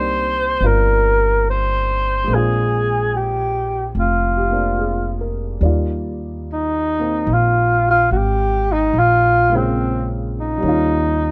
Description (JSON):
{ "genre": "jazz ballad", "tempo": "72 BPM", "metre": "4/4", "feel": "swing 68% on 8ths", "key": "Eb major", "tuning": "A4 = 439 Hz", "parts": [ { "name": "breathy alto saxophone", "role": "melody", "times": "0.0-11.3 s", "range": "C4 to C5", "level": "-20 LUFS", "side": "equal", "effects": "none" }, { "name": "warm upright piano", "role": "accompaniment", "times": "0.0-11.3 s", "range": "Db3 to D5", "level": "-28 LUFS", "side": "equal", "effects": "none" }, { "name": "upright bass", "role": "bass", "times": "0.0-11.3 s", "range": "F1 to Eb2", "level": "-23 LUFS", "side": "equal", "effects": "none" } ], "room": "little or no reverb", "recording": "none", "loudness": "-18 LUFS", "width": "mono", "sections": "0.0-11.3 A section", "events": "none", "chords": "0.0 Cm9; 2.3 Bb9; 5.6 Ebmaj9; 8.9 Bbm7; 10.6 Eb9" }